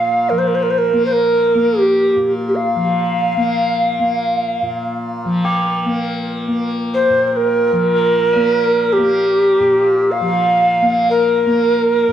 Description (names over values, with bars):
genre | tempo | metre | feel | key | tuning
world meditative, free-time meditation music | free time | none | none | unclear | A4 = 441 Hz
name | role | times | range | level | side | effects
breathy mellow Native American-style cedar flute | melody | 0.0-12.1 s | G4 to F5 | -14 LUFS | right 1 dB | cassette tape, plate reverb, analog delay
tanpura | drone | 0.0-12.1 s | Bb2 to Bb3 | -21 LUFS | left 1 dB | stereo widening, cassette tape
tubular bells | texture | 5.4-12.1 s | G4 to Bb4 | -26 LUFS | equal | cassette tape, plate reverb
room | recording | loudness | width
wet studio reverb, RT60 0.6 s | home recording on cassette | -13 LUFS | side -10 dB against mid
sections
0.0-12.1 A section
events
none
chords
none